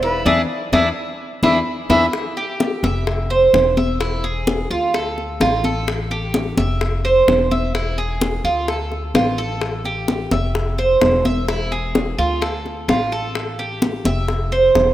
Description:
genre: latin, Cuban son and guajira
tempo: 128 BPM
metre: 4/4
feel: straight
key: unclear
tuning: A4 = 440 Hz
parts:
  - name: silver concert flute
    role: melody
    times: 0.0-2.1 s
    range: B4 to E5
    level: -21 LUFS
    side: left 2 dB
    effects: none
  - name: Cuban tres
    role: arpeggios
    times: 0.0-14.9 s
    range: D4 to E5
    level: -19 LUFS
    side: right 2 dB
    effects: none
  - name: upright bass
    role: bass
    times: 0.0-14.9 s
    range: E1 to E2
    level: -24 LUFS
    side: left 1 dB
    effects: none
  - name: bongos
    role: percussion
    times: 0.0-14.9 s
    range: none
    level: -26 LUFS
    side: left 4 dB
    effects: none
  - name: congas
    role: percussion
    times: 0.0-14.9 s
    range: none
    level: -23 LUFS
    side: left 1 dB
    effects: none
room: moderate lush hall reverb, RT60 2.8 s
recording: rough home demo mix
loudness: -16 LUFS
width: side -13 dB against mid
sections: 0.0-2.1 A section; 2.1-14.9 B section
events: band accent 0.3-2.1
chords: 0.3 E7; 2.1 Fsus2; 3.1 F5; 4.0 E7; 4.9 Dm; 5.9 A5; 6.8 F5; 7.7 E7; 8.7 Dm; 9.6 A5; 10.6 F5; 11.5 E7; 12.4 Dm; 13.4 A5; 14.3 F5

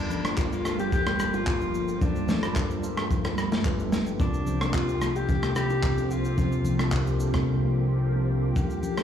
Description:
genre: amapiano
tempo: 110 BPM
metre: 4/4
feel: straight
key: unclear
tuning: A4 = 440 Hz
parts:
  - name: warm alto saxophone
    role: melody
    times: 0.0-9.0 s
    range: D4 to G4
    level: -32 LUFS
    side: left 2 dB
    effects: tape echo
  - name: mellow tine electric piano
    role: accompaniment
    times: 0.0-9.0 s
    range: C3 to C5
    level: -30 LUFS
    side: right 1 dB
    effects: medium stereo tremolo
  - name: soft string machine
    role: sustained chords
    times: 0.1-9.0 s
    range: F3 to G4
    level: -34 LUFS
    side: equal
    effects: phaser, ensemble chorus, sidechain pumping
  - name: fat analog bass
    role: bass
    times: 0.0-8.5 s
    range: G1 to C2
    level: -29 LUFS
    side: left 1 dB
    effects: none
  - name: crunchy breakbeat drum kit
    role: drums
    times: 0.1-9.0 s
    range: handclaps, kick drum, rim click, shaker, snare drum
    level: -28 LUFS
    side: equal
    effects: none
  - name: congas and bongos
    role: percussion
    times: 0.1-9.0 s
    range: none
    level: -36 LUFS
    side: left 4 dB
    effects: none
room: light reverb, studio reverb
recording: played on a big sound system in a bare room, stone room reverb, small room ambience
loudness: -23 LUFS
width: side -9 dB against mid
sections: 0.0-9.0 A section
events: drums muted 7.5-8.6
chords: 0.0 Gm9; 3.7 G13; 4.2 C7sus4

